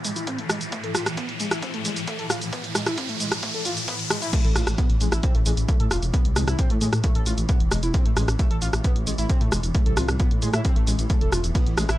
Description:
driving peak-time techno; 133 BPM; 4/4; straight; A harmonic minor; A4 = 441 Hz
overdriven synth lead; riff; 0.0-11.9 s; G#3 to A4; -31 LUFS; equal; distortion, lush chorus, sidechain pumping, analog delay
swarming drone; drone; 0.0-12.0 s; A2 to E3; -34 LUFS; equal; built-in reverb, sidechain pumping
punchy analog drum machine; drums; 0.0-12.0 s; crash cymbal, hi-hat, ride cymbal, rim click, shaker; -27 LUFS; equal; sidechain pumping on hats, sidechain pumping on perc, sidechain pumping on cymbals
riser; sound effects; 0.0-4.3 s; -31 LUFS; equal
electronic kick drum; drums; 0.3-11.6 s; -22 LUFS; equal; high-pass filter on kick, high-pass filter on room
dark detuned saw bass; bass; 4.4-12.0 s; E1 to A2; -25 LUFS; equal; tube saturation, sidechain pumping
digital ambience; dry, gritty hardware recording; -20 LUFS; side -15 dB against mid
0.0-4.3 A section; 4.3-12.0 B section
build-up 0.0-4.3; riser 0.0-4.3; filter sweep on analog synth lead 0.0-4.3; drop 4.3-12.0
0.0 A5
0.27 | 0.72 1.17 1.62 2.08 | 2.53 2.98 3.43 3.88 | 4.33 4.78 5.23 5.68 | 6.14 6.59 7.04 7.49 | 7.94 8.39 8.84 9.29 | 9.75 10.20 10.65 11.10 | 11.55

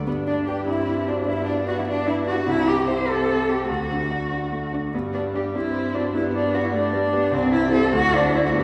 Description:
quick classical-period movement for piano quartet; 99 BPM (dotted quarters); 6/8; rubato; G major; A4 = 439 Hz
rich cello; second line; 0.0-8.6 s; B3 to C5; -25 LUFS; equal
clear concert grand piano; accompaniment; 0.0-8.6 s; C2 to E5; -28 LUFS; equal
warm violin; melody; 0.1-8.5 s; B3 to D5; -36 LUFS; equal
warm viola; accompaniment; 0.1-8.6 s; G3 to D4; -31 LUFS; equal
wet concert hall reverb, RT60 2.5 s; heard from further back in the room; -22 LUFS; mono
0.1-8.6 A section
0.1 G; 0.7 D7/G; 1.3 G; 2.5 C; 3.7 D; 4.9 G; 5.5 D7/G; 6.1 G; 7.3 C; 7.9 D5
| 0.06 0.67 | 1.27 1.87 | 2.47 3.07 | 3.68 4.31 | 4.93 5.54 | 6.15 6.74 | 7.33 7.93 | 8.55

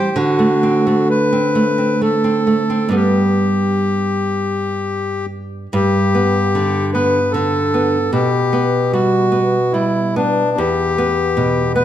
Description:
romantic duo for bandoneon and classical guitar; 62-78 BPM; 3/4; rubato; G major; A4 = 440 Hz
bandoneon; melody; 0.0-11.8 s; D4 to C5; -18 LUFS; left 2 dB
nylon-string guitar; accompaniment; 0.0-11.8 s; E2 to G4; -16 LUFS; right 1 dB
moderate recital hall reverb, RT60 1.7 s; -14 LUFS; side -11 dB against mid
0.0-5.7 A section; 5.7-11.8 B section
0.2 D7; 2.9 G; 8.1 G/B; 10.6 Em
| 0.17 1.10 2.02 | 2.95 3.89 4.83 | 5.73 6.54 7.33 | 8.12 8.92 9.72 | 10.58 11.37

